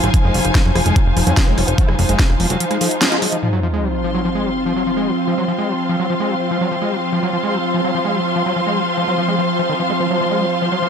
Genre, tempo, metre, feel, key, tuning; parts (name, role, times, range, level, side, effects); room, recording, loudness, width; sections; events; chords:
psychedelic trance; 146 BPM; 4/4; straight; F phrygian; A4 = 440 Hz
evolving wavetable pad; sustained chords; 0.0-10.9 s; F3 to F4; -22 LUFS; equal; chorus, built-in reverb, sidechain pumping
screaming distorted acid line; riff; 0.0-10.9 s; Eb3 to F4; -22 LUFS; equal; distortion, chorus, auto-pan, sidechain pumping, dub echo
plucky analog bass; bass; 0.0-2.6 s; F1 to F2; -18 LUFS; equal
drum and bass drum kit; drums; 0.0-3.4 s; hi-hat, rim click, snare drum; -20 LUFS; right 1 dB; overdrive
dark studio string section; texture; 0.0-10.9 s; F4 to C6; -21 LUFS; equal; sidechain pumping
electronic kick drum; drums; 0.1-2.3 s; -14 LUFS; equal; overdrive
vowel-sweep wobble bass; second line; 1.3-3.4 s; Ab3 to F4; -30 LUFS; left 3 dB; wide subtle chorus, sidechain pumping, high-pass filter, dub echo
sub drop; sound effects; 3.4-5.1 s; -24 LUFS; equal
moderate digital room reverb, RT60 1.0 s, digital ambience; -15 LUFS; side -7 dB against mid
0.0-3.4 A section; 3.4-10.9 B section
band accent 3.0; impact 3.4-5.1
0.0 F5